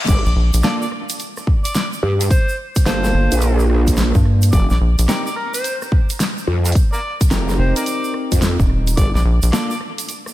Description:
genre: glitch hop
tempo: 108 BPM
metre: 4/4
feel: swing 64% on 16ths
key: G minor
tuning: A4 = 441 Hz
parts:
  - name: overdriven harmonica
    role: melody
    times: 0.1-9.8 s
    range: Bb4 to D5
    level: -26 LUFS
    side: left 1 dB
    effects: tape echo
  - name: growl bass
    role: bass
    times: 0.1-9.1 s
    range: F1 to G2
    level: -17 LUFS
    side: equal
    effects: chorus, overdrive, high-pass filter
  - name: electronic kick drum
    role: drums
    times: 0.1-9.1 s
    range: none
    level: -16 LUFS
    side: equal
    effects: high-pass filter on kick, small room ambience
  - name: pop drum kit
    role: drums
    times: 0.1-10.3 s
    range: crash cymbal, hi-hat, rim click, snare drum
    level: -24 LUFS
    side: equal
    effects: small room ambience
  - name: egg shaker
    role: percussion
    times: 0.1-10.3 s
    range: none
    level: -30 LUFS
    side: right 5 dB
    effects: none
  - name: rubbery square bass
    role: bass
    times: 0.3-9.5 s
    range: Eb1 to G2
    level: -14 LUFS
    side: equal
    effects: tube saturation
  - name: clean electric guitar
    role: stabs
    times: 0.6-9.7 s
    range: Bb3 to Bb4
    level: -24 LUFS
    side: right 1 dB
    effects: lush chorus, sidechain pumping, tape echo
room: digital ambience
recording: high-pass filter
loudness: -15 LUFS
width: side -15 dB against mid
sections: 0.1-10.3 A section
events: drop 0.1-10.3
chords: 0.1 Gm7; 4.5 F7sus4; 9.0 Gm7 (rootless)

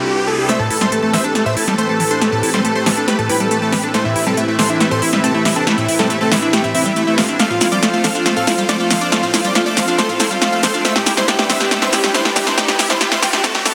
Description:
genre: uplifting trance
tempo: 139 BPM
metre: 4/4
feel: straight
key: A minor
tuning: A4 = 439 Hz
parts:
  - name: dense compressed supersaw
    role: melody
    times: 0.0-13.7 s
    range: A3 to F5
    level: -21 LUFS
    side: equal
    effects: dub echo
  - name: supersaw pad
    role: sustained chords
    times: 0.0-13.7 s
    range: C2 to C5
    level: -25 LUFS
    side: equal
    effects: none
  - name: riser and swell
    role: sound effects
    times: 0.0-0.5, 10.3-13.7 s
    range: none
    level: -28 LUFS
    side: equal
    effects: none
  - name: supersaw stab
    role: second line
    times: 0.5-13.7 s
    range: E5 to F6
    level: -26 LUFS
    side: equal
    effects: dub echo
  - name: liquid acid bass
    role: arpeggios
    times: 0.5-13.7 s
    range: A2 to E4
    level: -23 LUFS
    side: equal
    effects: chorus, dub echo
  - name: big-room dance drum kit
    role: drums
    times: 0.5-13.7 s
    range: hi-hat, shaker, snare drum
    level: -20 LUFS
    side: equal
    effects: none
room: moderate lush hall reverb, RT60 1.6 s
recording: high-pass filter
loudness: -16 LUFS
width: mono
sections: 0.5-13.7 A section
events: riser 0.0-0.5; build-up 0.5-13.7; drum fill 0.5-13.7; filter sweep 0.5-13.7; swell 13.4-13.7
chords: 0.5 Am7; 7.4 F; 10.8 Cmaj7

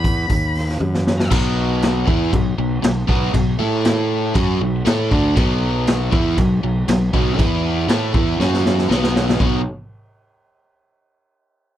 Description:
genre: blues rock power trio and southern rock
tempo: 119 BPM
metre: 4/4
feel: straight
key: unclear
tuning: A4 = 440 Hz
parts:
  - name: octave-fuzz lead guitar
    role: melody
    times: 0.0-1.3 s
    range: B5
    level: -26 LUFS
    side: left 1 dB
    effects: distortion
  - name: fuzz fingered electric bass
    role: bass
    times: 0.0-9.6 s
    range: B1 to A2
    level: -21 LUFS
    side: equal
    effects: overdrive
  - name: raw garage drum kit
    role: drums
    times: 0.0-9.5 s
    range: crash cymbal, hi-hat, kick drum, snare drum, toms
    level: -20 LUFS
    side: equal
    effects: none
  - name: biting overdriven guitar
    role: riff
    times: 1.3-9.6 s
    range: B2 to A4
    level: -20 LUFS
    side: equal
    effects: none
room: little or no reverb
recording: none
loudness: -16 LUFS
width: side -12 dB against mid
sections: 0.0-1.3 A section; 1.3-9.4 B section; 9.4-11.4 C section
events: lead electric guitar solo 0.0-1.3; drum fill 0.8-1.3, 8.4-9.4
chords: 0.0 B; 1.3 B5; 3.6 A5; 4.4 B5; 7.4 E5; 7.9 Esus4; 8.4 F#5; 8.9 B5

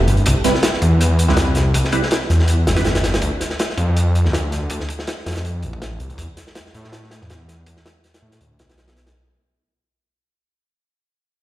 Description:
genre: drum and bass, jungle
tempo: 162 BPM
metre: 4/4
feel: straight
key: unclear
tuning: A4 = 440 Hz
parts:
  - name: filtered dub chord stab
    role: stabs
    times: 0.0-3.2 s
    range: G3 to B4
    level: -23 LUFS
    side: right 2 dB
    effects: phaser, wide subtle chorus, dub echo
  - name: detuned saw bass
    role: bass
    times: 0.0-9.1 s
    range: G1 to A2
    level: -17 LUFS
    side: equal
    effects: none
  - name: crunchy breakbeat drum kit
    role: drums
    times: 0.1-9.1 s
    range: hi-hat, kick drum, snare drum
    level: -22 LUFS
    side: equal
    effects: high-pass filter on kick, high-pass filter on hats, high-pass filter on snare, high-pass filter on room
room: light reverb, small room ambience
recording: played on a big sound system in a bare room, large studio reverb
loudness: -16 LUFS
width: side -15 dB against mid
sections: 0.0-9.1 A section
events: fade-out 0.0-9.1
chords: 0.3 Cmaj7; 3.2 Dm; 6.2 Esus4

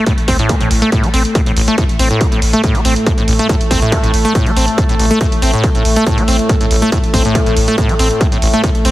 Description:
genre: driving peak-time techno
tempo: 140 BPM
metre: 4/4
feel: straight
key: A minor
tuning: A4 = 441 Hz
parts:
  - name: acid bass, saw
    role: riff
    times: 0.0-8.9 s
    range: A1 to C4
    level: -16 LUFS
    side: equal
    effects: analog chorus, sidechain pumping, digital delay
  - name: analog drone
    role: drone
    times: 0.0-8.9 s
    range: A2 to A3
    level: -19 LUFS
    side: equal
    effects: chorus, sidechain pumping
  - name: electronic hi-hat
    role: drums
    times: 0.1-8.9 s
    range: none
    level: -22 LUFS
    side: right 2 dB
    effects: none
  - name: electronic kick drum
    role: drums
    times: 0.1-8.7 s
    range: none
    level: -15 LUFS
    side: equal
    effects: none
  - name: warm sub bass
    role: bass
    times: 0.2-8.9 s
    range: A1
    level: -17 LUFS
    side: equal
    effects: tube saturation, sidechain pumping, low-pass filter
room: light reverb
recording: heavily compressed radio sound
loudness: -11 LUFS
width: side -16 dB against mid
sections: 0.0-8.9 A section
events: none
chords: none

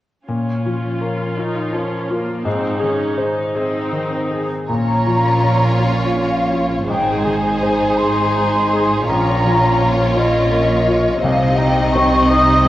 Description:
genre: cinematic, emotional film score for orchestra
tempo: 55 BPM (dotted quarters)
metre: 6/8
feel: rubato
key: Bb minor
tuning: A4 = 440 Hz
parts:
  - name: clear baby grand piano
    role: accompaniment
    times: 0.3-12.7 s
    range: Bb1 to Db5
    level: -21 LUFS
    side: left 1 dB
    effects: none
  - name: rich chamber viola section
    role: accompaniment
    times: 0.3-12.7 s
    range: Bb3 to F4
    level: -24 LUFS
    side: right 1 dB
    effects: none
  - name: concert harp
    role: arpeggios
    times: 0.3-12.7 s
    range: Ab2 to Eb5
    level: -26 LUFS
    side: left 3 dB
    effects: none
  - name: warm symphonic violin section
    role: melody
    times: 4.7-12.7 s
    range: C5 to Eb5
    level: -26 LUFS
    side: left 1 dB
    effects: none
  - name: mellow hollow flute section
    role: second line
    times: 4.7-12.7 s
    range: Eb5 to Eb6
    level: -18 LUFS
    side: equal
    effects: none
  - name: warm symphonic violin section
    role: second line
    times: 4.7-12.7 s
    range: Eb4 to Ab4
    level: -24 LUFS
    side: left 1 dB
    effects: none
  - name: clear studio cello section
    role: bass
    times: 4.7-12.7 s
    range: Ab2 to C3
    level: -22 LUFS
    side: right 1 dB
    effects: none
  - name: rich symphonic double bass section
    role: bass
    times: 4.7-12.7 s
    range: Ab1 to C2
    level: -23 LUFS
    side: right 2 dB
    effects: none
room: wet scoring stage reverb, RT60 1.7 s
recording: worn, warbling old tape, cassette tape, warbly pitch drift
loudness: -15 LUFS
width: side -14 dB against mid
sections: 0.3-4.7 A section; 4.7-12.7 B section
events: none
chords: 0.3 Bbm; 2.5 Ab; 4.7 Bbm; 6.9 Ab; 9.1 Bbm; 11.2 Cm

